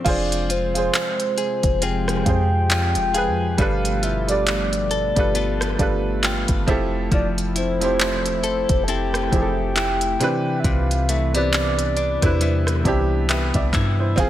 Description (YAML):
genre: contemporary R&B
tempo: 68 BPM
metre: 4/4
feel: swing 58% on 16ths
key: C major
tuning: A4 = 440 Hz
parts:
  - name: clear baby grand piano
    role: accompaniment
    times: 0.0-14.3 s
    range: C3 to A5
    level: -26 LUFS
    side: right 3 dB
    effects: none
  - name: direct-recorded clean electric guitar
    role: arpeggios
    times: 0.0-14.3 s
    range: C3 to A4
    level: -28 LUFS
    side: left 5 dB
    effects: none
  - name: soft octave-layered synth lead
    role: melody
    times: 0.1-13.1 s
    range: C5 to A5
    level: -24 LUFS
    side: equal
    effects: chorus, phaser, digital delay
  - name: warm analog pad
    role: sustained chords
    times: 0.1-14.3 s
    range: B2 to B4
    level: -30 LUFS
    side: equal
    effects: chorus
  - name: soft 808-style bass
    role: bass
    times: 0.1-14.3 s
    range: E1 to G2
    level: -24 LUFS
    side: equal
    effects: none
  - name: smooth R&B drum kit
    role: drums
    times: 0.1-14.3 s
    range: crash cymbal, handclaps, hi-hat, kick drum, rim click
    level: -23 LUFS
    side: equal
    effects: none
room: little or no reverb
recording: none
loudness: -18 LUFS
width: side -12 dB against mid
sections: 0.1-14.3 A section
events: grand piano fill 5.4-7.1, 12.4-14.2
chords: 0.1 Fm; 3.6 G9; 6.7 Fmaj7; 10.2 Cmaj7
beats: | 0.06 0.94 1.82 2.70 | 3.59 4.47 5.35 6.23 | 7.12 8.00 8.88 9.76 | 10.64 11.53 12.41 13.29 | 14.18